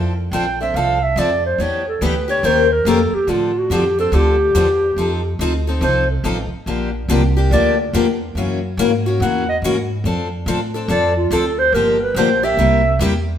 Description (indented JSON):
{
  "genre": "acoustic string swing (jazz manouche)",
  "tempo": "142 BPM",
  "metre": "4/4",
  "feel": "swing 64% on 8ths",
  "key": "F major",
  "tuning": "A4 = 441 Hz",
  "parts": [
    { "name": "picked steel-string acoustic guitar", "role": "accompaniment", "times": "0.0-13.1 s", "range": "C3 to Bb4", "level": "-20 LUFS", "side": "left 4 dB", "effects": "none" },
    { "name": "upright bass", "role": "bass", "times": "0.0-13.4 s", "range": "G1 to A2", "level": "-20 LUFS", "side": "right 1 dB", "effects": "none" },
    { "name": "breathy clarinet", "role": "melody", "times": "0.3-13.0 s", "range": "F4 to G5", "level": "-17 LUFS", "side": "right 2 dB", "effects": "none" }
  ],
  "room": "wet stone room reverb, RT60 1.2 s",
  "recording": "band playing live in one room",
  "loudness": "-15 LUFS",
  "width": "side -9 dB against mid",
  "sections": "0.0-13.4 A section",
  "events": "clarinet solo 0.0-13.4",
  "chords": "0.0 F6; 1.6 Em7; 2.4 Eb9; 3.3 Dm7; 5.0 F7; 6.7 Bb6; 8.4 Gb9; 10.0 F6; 11.7 Gm7; 12.6 C7"
}